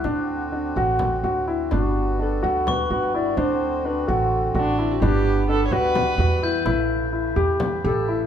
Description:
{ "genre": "contemporary instrumental, chamber music in an uneven meter", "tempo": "254 BPM (eighths)", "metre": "7/8", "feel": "straight", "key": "D major", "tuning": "A4 = 443 Hz", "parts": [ { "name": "pedal harmonium", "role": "sustained chords", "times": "0.0-8.3 s", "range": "C#3 to B4", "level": "-31 LUFS", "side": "left 1 dB", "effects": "none" }, { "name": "warm concert grand piano", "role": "arpeggios", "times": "0.0-8.3 s", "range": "D4 to G4", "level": "-23 LUFS", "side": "left 1 dB", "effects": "none" }, { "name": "upright bass", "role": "bass", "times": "0.0-8.3 s", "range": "G1 to E2", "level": "-25 LUFS", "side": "right 2 dB", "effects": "none" }, { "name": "frame drum", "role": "percussion", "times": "0.0-7.8 s", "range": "none", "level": "-31 LUFS", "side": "left 2 dB", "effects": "none" }, { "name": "glockenspiel with hard plastic mallets", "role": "texture", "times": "0.0-3.6, 6.4-6.9 s", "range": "C#6 to G6", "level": "-33 LUFS", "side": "left 5 dB", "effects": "none" }, { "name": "breathy clarinet", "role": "melody", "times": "1.7-4.8, 7.9-8.3 s", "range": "F#4 to D5", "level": "-27 LUFS", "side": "left 1 dB", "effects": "none" }, { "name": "warm viola", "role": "second line", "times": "4.6-6.7 s", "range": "D4 to C#5", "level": "-25 LUFS", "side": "right 2 dB", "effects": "none" } ], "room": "moderate recital hall reverb, RT60 1.7 s", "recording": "minimal, uncompressed stereo recording", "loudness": "-19 LUFS", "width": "side -9 dB against mid", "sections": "0.0-8.3 A section", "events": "none", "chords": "0.0 D7; 1.7 Gmaj7; 3.4 D7; 5.0 Gmaj7; 6.7 A7" }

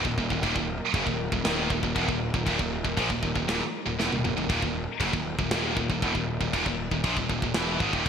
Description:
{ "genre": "heavy metal", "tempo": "118 BPM", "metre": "4/4", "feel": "straight", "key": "Eb phrygian", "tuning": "A4 = 441 Hz", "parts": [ { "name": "dark symphonic string section", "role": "sustained chords", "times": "0.0-8.1 s", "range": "Gb3 to Bb4", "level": "-37 LUFS", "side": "left 1 dB", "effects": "none" }, { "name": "heavy high-gain guitar", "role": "riff", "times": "0.0-8.1 s", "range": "Eb2 to F3", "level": "-30 LUFS", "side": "right 10 dB", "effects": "distortion" }, { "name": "high-gain distorted guitar", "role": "riff", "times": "0.0-8.1 s", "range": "Eb2 to F3", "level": "-30 LUFS", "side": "left 9 dB", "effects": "distortion" }, { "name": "fuzz picked electric bass", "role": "bass", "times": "0.0-8.1 s", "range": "Eb1 to Cb2", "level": "-32 LUFS", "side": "equal", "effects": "overdrive" }, { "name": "tight metal drum kit", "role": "drums", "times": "0.0-8.1 s", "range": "crash cymbal, kick drum, snare drum, toms", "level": "-31 LUFS", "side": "equal", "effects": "gated reverb" } ], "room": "moderate lush hall reverb, RT60 1.7 s, studio ambience", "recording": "bright 1980s-style digital production", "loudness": "-24 LUFS", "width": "side -7 dB against mid", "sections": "0.0-8.1 A section", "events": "drum fill 4.0-4.5", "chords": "0.0 Ebm" }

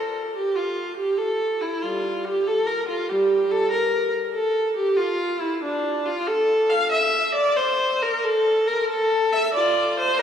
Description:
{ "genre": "classical, baroque-style suite movement for unaccompanied viola", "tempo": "94 BPM (dotted quarters)", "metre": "12/8", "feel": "rubato", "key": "unclear", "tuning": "A4 = 440 Hz", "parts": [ { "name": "rich viola", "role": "solo", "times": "0.0-10.2 s", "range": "G3 to F5", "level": "-20 LUFS", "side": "equal", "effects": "none" } ], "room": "wet church reverb, RT60 3.5 s", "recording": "recorded in a church or concert hall", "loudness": "-20 LUFS", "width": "side -8 dB against mid", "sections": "0.0-10.2 A section", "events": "none", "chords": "none" }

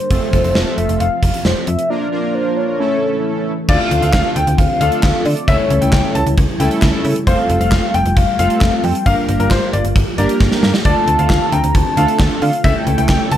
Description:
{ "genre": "synth-pop", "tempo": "134 BPM", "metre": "4/4", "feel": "straight", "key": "D minor", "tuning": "A4 = 440 Hz", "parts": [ { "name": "warm velvety synth lead", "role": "melody", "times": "0.0-13.4 s", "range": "C5 to Bb5", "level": "-20 LUFS", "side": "left 1 dB", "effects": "chorus, slapback echo" }, { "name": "string machine, cellos", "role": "sustained chords", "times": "0.0-13.4 s", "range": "C#3 to Bb4", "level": "-24 LUFS", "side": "equal", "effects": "ensemble chorus" }, { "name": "gated 80s drum kit", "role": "drums", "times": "0.0-13.4 s", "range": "crash cymbal, handclaps, hi-hat, kick drum, snare drum", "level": "-16 LUFS", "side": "equal", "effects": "none" }, { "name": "analog synth brass", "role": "accompaniment", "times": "0.1-13.4 s", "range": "A3 to Bb4", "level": "-20 LUFS", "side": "right 1 dB", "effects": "chorus" }, { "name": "slap-like FM bass", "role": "bass", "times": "0.1-13.4 s", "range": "F1 to D3", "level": "-18 LUFS", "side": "equal", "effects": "none" }, { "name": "clear concert grand piano", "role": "second line", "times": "3.7-13.4 s", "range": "Bb4 to A5", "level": "-22 LUFS", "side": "left 5 dB", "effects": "slapback echo" } ], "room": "light reverb, small room ambience", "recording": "none", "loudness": "-13 LUFS", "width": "side -11 dB against mid", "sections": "0.0-3.7 A section; 3.7-13.4 B section", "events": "break 1.9-3.7; drum fill 10.4-10.9", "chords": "0.1 F; 1.9 Bb; 2.8 A; 3.7 Dm7; 5.5 A7/C#; 7.3 Fadd9; 9.1 Gm7; 10.9 Dm7; 12.6 A7/C#" }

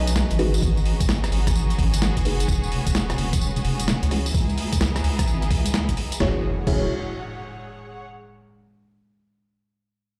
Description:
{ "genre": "UK garage, two-step garage", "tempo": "129 BPM", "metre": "4/4", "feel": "swing 64% on 16ths", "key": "E major", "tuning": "A4 = 440 Hz", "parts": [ { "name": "clear studio violin section", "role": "sustained chords", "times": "0.0-6.4 s", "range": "A3 to G#4", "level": "-35 LUFS", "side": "equal", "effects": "sidechain pumping" }, { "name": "deep soft wobble bass", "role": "bass", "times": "0.0-6.9 s", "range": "E1 to C#2", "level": "-26 LUFS", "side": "equal", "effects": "chorus" }, { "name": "rich studio string section", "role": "texture", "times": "0.0-8.0 s", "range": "F#4 to F#5", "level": "-41 LUFS", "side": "equal", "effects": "sidechain pumping" }, { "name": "boom bap sampler-style drum kit", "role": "drums", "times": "0.1-6.8 s", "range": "crash cymbal, hi-hat, rim click, snare drum, tambourine", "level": "-30 LUFS", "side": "equal", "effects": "none" }, { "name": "deep mellow chord stab", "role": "stabs", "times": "0.4-6.9 s", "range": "D#4 to C#5", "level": "-30 LUFS", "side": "equal", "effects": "chorus, phaser, cassette tape, digital delay" }, { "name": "electronic kick drum", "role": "drums", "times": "0.6-6.8 s", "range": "none", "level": "-26 LUFS", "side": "equal", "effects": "none" }, { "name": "impact", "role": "sound effects", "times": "6.2-8.1 s", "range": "none", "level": "-33 LUFS", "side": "equal", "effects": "none" } ], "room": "little or no reverb", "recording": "played on a big sound system in a bare room, large studio reverb", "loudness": "-22 LUFS", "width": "mono", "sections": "0.0-6.2 A section; 6.2-8.1 B section", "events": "fade-out on string section 0.0-6.2; filter sweep on synth stab 0.0-6.2", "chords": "0.4 G#m7; 2.5 E69; 4.3 C#m9; 6.2 E69" }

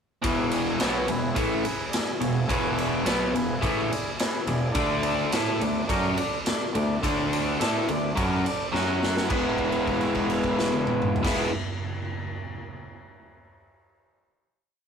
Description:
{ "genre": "garage rock duo or trio", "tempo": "106 BPM", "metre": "4/4", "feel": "straight", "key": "E mixolydian", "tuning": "A4 = 440 Hz", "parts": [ { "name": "combo organ", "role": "sustained chords", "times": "0.2-11.5 s", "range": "C#4 to D5", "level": "-32 LUFS", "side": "right 1 dB", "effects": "spring reverb" }, { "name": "biting overdriven guitar", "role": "riff", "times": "0.2-11.5 s", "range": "E2 to A4", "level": "-25 LUFS", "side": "equal", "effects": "none" }, { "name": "fuzz fingered electric bass", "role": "bass", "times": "0.2-11.5 s", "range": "E1 to A2", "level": "-32 LUFS", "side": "equal", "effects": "overdrive" }, { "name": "raw garage drum kit", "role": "drums", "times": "0.2-11.4 s", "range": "crash cymbal, kick drum, ride cymbal, snare drum, toms", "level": "-29 LUFS", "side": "equal", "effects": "none" } ], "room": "moderate small room ambience, RT60 0.5 s", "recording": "rough rehearsal-room recording, warm saturation", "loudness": "-23 LUFS", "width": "side -6 dB against mid", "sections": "0.2-9.3 verse; 9.3-11.6 final chord", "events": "drum fill 8.7-9.3; held note 9.3-11.2", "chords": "0.2 E; 4.8 D5; 8.7 F#5; 9.3 E" }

